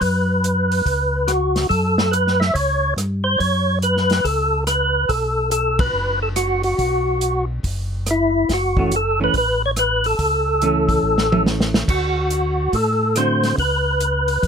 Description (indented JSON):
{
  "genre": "soul jazz organ trio",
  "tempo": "142 BPM",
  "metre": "4/4",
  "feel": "swing 65% on 8ths",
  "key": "F# minor",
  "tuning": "A4 = 439 Hz",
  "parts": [
    { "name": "percussive tonewheel organ", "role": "melody", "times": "0.0-14.5 s", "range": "E4 to E5", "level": "-18 LUFS", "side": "equal", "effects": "slow rotary speaker, overdrive, chorus vibrato" },
    { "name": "mellow tonewheel organ", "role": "bass", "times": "0.0-14.5 s", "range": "F#1 to A2", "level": "-22 LUFS", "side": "equal", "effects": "slow rotary speaker" },
    { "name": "warm soul drum kit", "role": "drums", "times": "0.0-14.5 s", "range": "crash cymbal, hi-hat, kick drum, ride cymbal, rim click, snare drum, toms", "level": "-24 LUFS", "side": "right 1 dB", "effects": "none" },
    { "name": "vintage hollow-body jazz guitar", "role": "accompaniment", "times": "8.8-13.6 s", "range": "D3 to F#4", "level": "-22 LUFS", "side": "right 2 dB", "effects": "none" }
  ],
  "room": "little or no reverb",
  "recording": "none",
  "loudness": "-16 LUFS",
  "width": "side -7 dB against mid",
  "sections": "0.0-14.5 A section",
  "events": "band accent 5.7; drum fill 11.0-11.9",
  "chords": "0.0 F#m; 5.1 B5; 8.5 F#m7; 11.9 D7; 13.6 C#7(no3)"
}